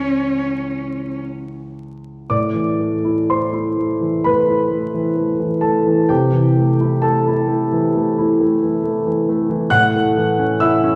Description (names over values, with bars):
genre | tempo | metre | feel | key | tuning
classical, romantic duo for cello and grand piano | 51-68 BPM | 4/4 | rubato | A minor | A4 = 439 Hz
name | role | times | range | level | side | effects
warm cello | melody | 0.0-1.2 s | C#4 | -24 LUFS | equal | none
warm grand piano | accompaniment | 0.0-11.0 s | C#2 to F#6 | -18 LUFS | equal | none
room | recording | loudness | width
wet recital hall reverb, RT60 1.6 s | heard from further back in the room, vinyl crackle | -18 LUFS | mono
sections
0.0-2.3 A section; 2.3-11.0 B section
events
none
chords
0.0 C#m; 2.3 Am; 6.1 Am/C; 9.7 A